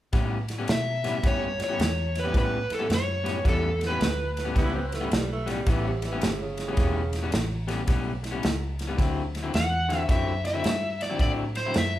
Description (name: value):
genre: electric blues shuffle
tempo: 108 BPM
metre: 4/4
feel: swing 65% on 8ths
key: A mixolydian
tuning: A4 = 440 Hz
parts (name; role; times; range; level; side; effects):
- electric guitar at the edge of break-up; riff; 0.1-11.8 s; A2 to E4; -31 LUFS; left 3 dB; none
- vintage muted fingered electric bass; bass; 0.1-12.0 s; E1 to B2; -30 LUFS; equal; none
- natural country drum kit; drums; 0.1-11.9 s; kick drum, ride cymbal, snare drum; -28 LUFS; equal; none
- overdriven slide guitar; melody; 0.7-5.5, 9.5-12.0 s; A4 to F#5; -29 LUFS; equal; none
- growling tenor saxophone; second line; 4.6-7.5 s; C3 to E4; -32 LUFS; right 3 dB; none
room: moderate large studio reverb, RT60 0.9 s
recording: band playing live in one room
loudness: -24 LUFS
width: side -13 dB against mid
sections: 0.1-12.0 A section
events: none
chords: 0.1 A9; 9.0 D9